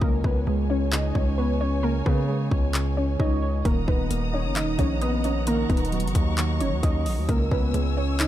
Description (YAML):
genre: hip hop, trap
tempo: 132 BPM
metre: 4/4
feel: half-time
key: unclear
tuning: A4 = 440 Hz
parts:
  - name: warbly dusty pluck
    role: melody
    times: 0.0-8.3 s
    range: Bb3 to Eb5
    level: -28 LUFS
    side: left 1 dB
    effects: chorus, low-pass filter
  - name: soft electric-piano-like synth keys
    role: accompaniment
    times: 0.0-8.3 s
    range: Db3 to Eb5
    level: -29 LUFS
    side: right 4 dB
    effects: chorus, low-pass filter
  - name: warm symphonic string section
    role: sustained chords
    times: 0.0-8.3 s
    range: Db5 to Fb6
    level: -36 LUFS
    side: left 1 dB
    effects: none
  - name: distorted 808-style bass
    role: bass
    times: 0.0-8.3 s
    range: Eb1 to Db3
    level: -26 LUFS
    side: equal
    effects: distortion
  - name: trap drum kit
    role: drums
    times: 0.0-8.3 s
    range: handclaps, hi-hat, kick drum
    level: -25 LUFS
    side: equal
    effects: none
room: little or no reverb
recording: dark, warm production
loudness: -21 LUFS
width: side -12 dB against mid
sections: 0.0-8.3 A section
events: break 0.0-3.7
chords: 0.0 Db5; 3.7 Ebm; 7.3 Dbm